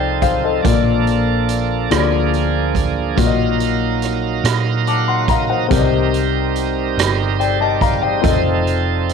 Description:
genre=slow gospel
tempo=47 BPM (dotted quarters)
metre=6/8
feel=straight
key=Bb major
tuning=A4 = 439 Hz
part: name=warm baby grand piano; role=accompaniment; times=0.0-9.1 s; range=Bb2 to D6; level=-19 LUFS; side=left 12 dB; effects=none
part: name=bright tonewheel organ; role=sustained chords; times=0.0-9.1 s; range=F3 to Gb5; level=-21 LUFS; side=right 12 dB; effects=fast rotary speaker, overdrive
part: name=hollow-body short-scale fingered electric bass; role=bass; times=0.0-9.1 s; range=F1 to Bb2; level=-21 LUFS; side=right 1 dB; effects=none
part: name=swinging big-band drum kit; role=drums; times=0.2-9.1 s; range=hi-hat, kick drum, rim click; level=-21 LUFS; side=right 4 dB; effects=none
room=light reverb, small room ambience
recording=1960s-style stereo with parts hard left and right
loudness=-14 LUFS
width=side -6 dB against mid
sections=0.0-9.1 A section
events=tonewheel organ fill 4.5-5.7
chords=0.0 F7; 0.7 Bbmaj7; 1.9 Bb7/D; 3.2 Ebmadd9/Bb; 5.7 Cm7; 8.2 F7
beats=| 0.66 1.92 | 3.19 4.45 | 5.72 6.98 | 8.24

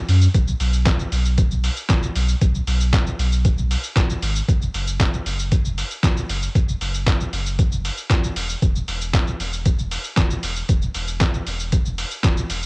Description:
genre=dance-pop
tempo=116 BPM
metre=4/4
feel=straight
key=unclear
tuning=A4 = 439 Hz
part: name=warm sub bass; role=bass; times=0.1-12.7 s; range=E1 to F#2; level=-22 LUFS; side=equal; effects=sidechain pumping
part: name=trip hop sampler-style drum kit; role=drums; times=0.1-12.7 s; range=handclaps, hi-hat, kick drum, shaker, snare drum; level=-19 LUFS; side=equal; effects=overdrive, cassette tape
room=little or no reverb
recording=home recording on cassette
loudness=-18 LUFS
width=side -31 dB against mid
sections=0.0-12.7 A section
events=none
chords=none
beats=| 0.35 0.86 1.38 1.90 | 2.42 2.93 3.45 3.97 | 4.48 5.00 5.52 6.04 | 6.55 7.07 7.59 8.11 | 8.62 9.14 9.66 10.17 | 10.69 11.21 11.73 12.24

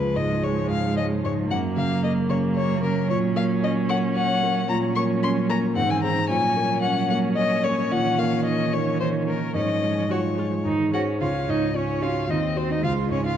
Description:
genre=quick classical-period movement for piano quartet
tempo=112 BPM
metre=3/4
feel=straight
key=F# major, Db major from 4.7 s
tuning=A4 = 440 Hz
part: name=rich violin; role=melody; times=0.0-13.4 s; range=A#4 to C#6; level=-26 LUFS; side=left 5 dB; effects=none
part: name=rich cello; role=second line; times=0.0-13.4 s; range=Eb3 to Gb4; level=-27 LUFS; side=right 6 dB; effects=none
part: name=clear viola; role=accompaniment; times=0.0-13.4 s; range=Ab3 to Gb4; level=-30 LUFS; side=right 3 dB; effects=none
part: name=warm concert grand piano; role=accompaniment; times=0.0-13.4 s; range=C#2 to C#5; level=-25 LUFS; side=left 1 dB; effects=none
room=moderate scoring stage reverb, RT60 2.0 s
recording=dark, warm production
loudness=-21 LUFS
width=side -9 dB against mid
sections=0.0-11.2 A section; 11.2-13.4 B section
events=none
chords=0.0 C#; 1.5 F#; 3.1 F#/A#; 5.8 Ab; 6.3 Gb/Bb; 7.9 Eb5/Bb; 9.5 Db/Ab; 10.7 Ab; 11.2 Db; 12.3 Cdim/Eb; 12.8 Db5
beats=0.43 0.96 | 1.50 2.03 2.56 | 3.09 3.62 4.16 | 4.69 5.22 5.76 | 6.29 6.83 7.37 | 7.91 8.46 9.00 | 9.55 10.10 10.66 | 11.21 11.76 12.30 | 12.84

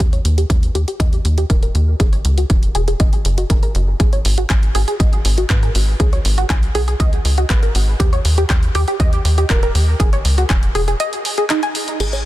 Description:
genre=progressive house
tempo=120 BPM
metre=4/4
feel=straight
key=G# minor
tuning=A4 = 441 Hz
part: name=tight sequenced synth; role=arpeggios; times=0.0-12.2 s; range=D#4 to G#5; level=-22 LUFS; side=equal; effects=chorus, sidechain pumping, dub echo
part: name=tight sequencer bass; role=bass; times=0.0-12.3 s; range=D#1 to G#2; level=-17 LUFS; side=equal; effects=sidechain pumping
part: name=big-room dance drum kit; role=drums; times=0.0-12.2 s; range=crash cymbal, handclaps, hi-hat, tambourine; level=-24 LUFS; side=equal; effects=overdrive, studio reverb
part: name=electronic kick drum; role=drums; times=0.0-10.6 s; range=none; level=-15 LUFS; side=equal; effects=studio reverb
room=little or no reverb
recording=dense, heavily limited modern master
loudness=-14 LUFS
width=side -15 dB against mid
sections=0.0-12.0 A section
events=filter sweep on synth arpeggio sound 0.0-12.0; break 11.0-12.0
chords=0.0 D#; 2.0 F#7(no3); 4.0 G#m; 8.0 D#; 10.0 F#5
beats=| 0.00 0.50 1.00 1.50 | 2.00 2.50 3.00 3.50 | 4.00 4.50 5.00 5.50 | 6.00 6.50 7.00 7.50 | 8.00 8.50 9.00 9.50 | 10.00 10.50 11.00 11.50 | 12.00

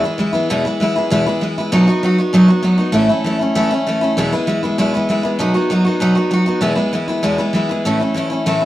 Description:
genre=rock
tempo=196 BPM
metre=4/4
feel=straight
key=E major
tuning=A4 = 435 Hz
part: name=picked steel-string acoustic guitar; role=solo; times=0.0-8.7 s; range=E2 to F#4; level=-14 LUFS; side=equal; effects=none
room=moderate studio reverb, RT60 0.8 s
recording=band playing live in one room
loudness=-14 LUFS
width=side -14 dB against mid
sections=0.0-6.6 A section; 6.6-8.7 B section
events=none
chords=0.0 E; 1.7 B; 3.0 A; 4.2 E; 5.4 B; 6.6 E; 7.9 A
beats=0.20 | 0.50 0.81 1.12 1.42 | 1.73 2.04 2.34 2.65 | 2.95 3.26 3.57 3.87 | 4.18 4.49 4.79 5.10 | 5.40 5.71 6.01 6.32 | 6.63 6.93 7.24 7.55 | 7.85 8.16 8.46

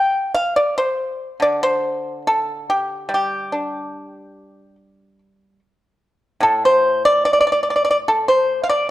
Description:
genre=chinese traditional, Chinese solo plucked strings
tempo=72 BPM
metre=4/4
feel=rubato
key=unclear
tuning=A4 = 440 Hz
part: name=pipa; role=solo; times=0.0-8.9 s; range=A2 to G5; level=-16 LUFS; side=equal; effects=none
room=moderate recital hall reverb, RT60 1.4 s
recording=dark, warm production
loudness=-16 LUFS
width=side -14 dB against mid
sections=0.0-8.9 A section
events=none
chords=none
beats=0.54 1.40 2.25 | 3.10 3.94 4.77 5.59 | 6.42 7.25 8.06

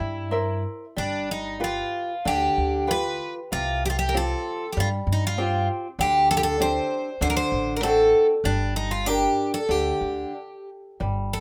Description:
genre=fado-style ballad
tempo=96 BPM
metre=4/4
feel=uneven beats, rubato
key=unclear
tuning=A4 = 440 Hz
part: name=picked twelve-string acoustic guitar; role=melody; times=0.0-11.4 s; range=D4 to C5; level=-26 LUFS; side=equal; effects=none
part: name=flamenco guitar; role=accompaniment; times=0.0-11.4 s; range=C3 to E5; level=-31 LUFS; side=equal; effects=none
part: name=upright bass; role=bass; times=0.0-11.4 s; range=G1 to G2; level=-31 LUFS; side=equal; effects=none
room=light reverb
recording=none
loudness=-24 LUFS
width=mono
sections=0.0-11.0 A section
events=stop 10.3-11.0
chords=0.0 C7; 1.0 G7; 3.5 Csus4; 6.0 D7sus4; 7.2 D7; 8.4 Gm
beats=0.32 | 0.97 1.62 2.26 2.89 | 3.52 4.14 4.77 5.38 | 5.99 6.60 7.21 7.82 | 8.44 9.06 9.69 10.34 | 11.00

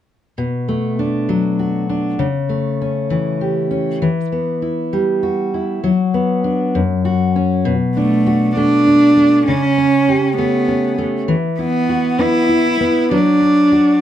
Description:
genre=pop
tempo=66 BPM (dotted quarters)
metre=6/8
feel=straight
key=B minor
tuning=A4 = 440 Hz
part: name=fingerpicked steel-string acoustic guitar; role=accompaniment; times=0.4-14.0 s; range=F#2 to G4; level=-16 LUFS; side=left 1 dB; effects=none
part: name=warm cello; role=melody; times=8.0-14.0 s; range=A3 to E4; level=-13 LUFS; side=right 1 dB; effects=plate reverb, ping-pong delay
room=moderate small room reverb, RT60 0.5 s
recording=none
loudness=-14 LUFS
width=side -11 dB against mid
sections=0.4-7.7 A section; 7.7-14.0 B section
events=none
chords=0.4 Bm7; 2.2 A7/C#; 4.0 Emadd9; 5.8 Bm/F#; 6.7 F#5; 7.7 Bm7; 9.5 A7/C#; 11.3 Esus2; 13.1 D/F#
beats=| 0.38 1.29 | 2.20 3.11 | 4.02 4.93 | 5.84 6.75 | 7.66 8.56 | 9.47 10.38 | 11.29 12.20 | 13.11

